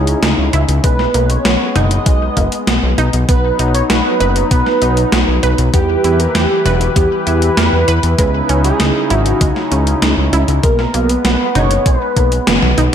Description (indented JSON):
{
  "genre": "synthwave",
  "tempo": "98 BPM",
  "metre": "4/4",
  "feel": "straight",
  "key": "unclear",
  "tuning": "A4 = 440 Hz",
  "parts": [
    { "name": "wide unison lead", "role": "melody", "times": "0.0-12.8 s", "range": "F#4 to D#5", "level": "-18 LUFS", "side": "right 1 dB", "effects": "lush chorus, ping-pong delay" },
    { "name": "warm analog pad", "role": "sustained chords", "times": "0.0-12.9 s", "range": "C#3 to B4", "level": "-20 LUFS", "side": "left 1 dB", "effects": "chorus, sidechain pumping" },
    { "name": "wide unison pluck", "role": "arpeggios", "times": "0.0-12.9 s", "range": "G#3 to B4", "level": "-22 LUFS", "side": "right 4 dB", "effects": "cassette tape, ping-pong delay" },
    { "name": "fat analog bass", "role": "bass", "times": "0.0-12.9 s", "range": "E1 to E2", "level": "-15 LUFS", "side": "equal", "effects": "sidechain pumping" },
    { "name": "gated 80s digital drum machine", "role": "drums", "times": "0.1-12.9 s", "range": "hi-hat, snare drum, toms", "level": "-17 LUFS", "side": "equal", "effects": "gated reverb, gated reverb snare" },
    { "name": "electronic kick drum", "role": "drums", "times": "0.8-12.3 s", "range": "none", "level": "-14 LUFS", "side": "equal", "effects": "none" }
  ],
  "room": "light reverb",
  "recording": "none",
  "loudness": "-11 LUFS",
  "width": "side -8 dB against mid",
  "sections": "0.0-12.9 A section",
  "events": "drum fill 12.5-12.9; band accent 12.5-12.8",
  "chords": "0.0 C#madd9; 0.8 G#madd9; 3.3 B; 5.7 Em; 8.2 C#madd9; 10.6 G#madd9",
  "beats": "0.23 | 0.84 1.45 2.06 2.67 | 3.29 3.90 4.51 5.12 | 5.74 6.35 6.96 7.57 | 8.19 8.80 9.41 10.02 | 10.63 11.25 11.86 12.47"
}